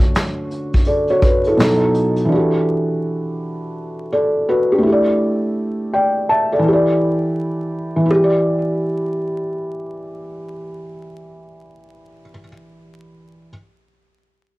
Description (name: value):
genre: lo-fi hip hop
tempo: 83 BPM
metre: 4/4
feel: swing 63% on 16ths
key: E dorian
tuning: A4 = 440 Hz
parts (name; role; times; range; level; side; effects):
- felt-muted upright piano; accompaniment; 0.0-13.5 s; B2 to A5; -17 LUFS; equal; low-pass filter, cassette tape
- vintage brush drum kit; drums; 0.0-2.3 s; handclaps, hi-hat, kick drum, snare drum; -17 LUFS; equal; cassette tape
- kalimba; melody; 8.1-10.2 s; G4; -22 LUFS; equal; low-pass filter, cassette tape
room: light reverb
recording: home recording on cassette, vinyl crackle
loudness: -15 LUFS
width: side -19 dB against mid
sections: 0.0-8.1 A section; 8.1-11.0 B section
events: none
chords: 0.0 Dmaj7; 1.6 B7; 2.3 Em11; 4.8 A7sus4; 8.1 Em7